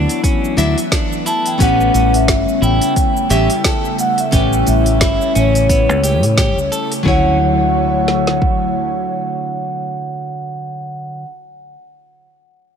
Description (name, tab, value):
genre	sunset chillout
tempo	88 BPM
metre	4/4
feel	swing 57% on 16ths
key	D major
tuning	A4 = 440 Hz
part	nylon-string guitar	accompaniment	0.0-11.3 s	D3 to E5	-20 LUFS	moving between left 9 dB and right 5 dB	auto-pan, ping-pong delay
part	airy breathy pad	sustained chords	0.0-10.5 s	C#3 to C#5	-22 LUFS	left 2 dB	chorus, phaser, vintage 12-bit sampler grit
part	clean electric guitar	arpeggios	0.0-7.4 s	B3 to A4	-24 LUFS	right 1 dB	ping-pong delay
part	fingered electric bass	bass	0.0-9.1 s	G1 to A2	-17 LUFS	equal	none
part	deep house drum kit	drums	0.1-7.0 s	hi-hat, shaker, snare drum	-21 LUFS	equal	none
part	deep house drum kit	drums	0.2-8.6 s	kick drum, snare drum	-18 LUFS	equal	none
part	vibraphone with soft mallets	melody	1.3-11.2 s	C#5 to A5	-19 LUFS	right 2 dB	ping-pong delay
room	light reverb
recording	none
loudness	-13 LUFS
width	side -7 dB against mid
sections	0.0-7.1 A section; 7.1-9.8 B section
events	none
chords	0.0 Dmaj9; 1.6 A9; 7.1 Dmaj9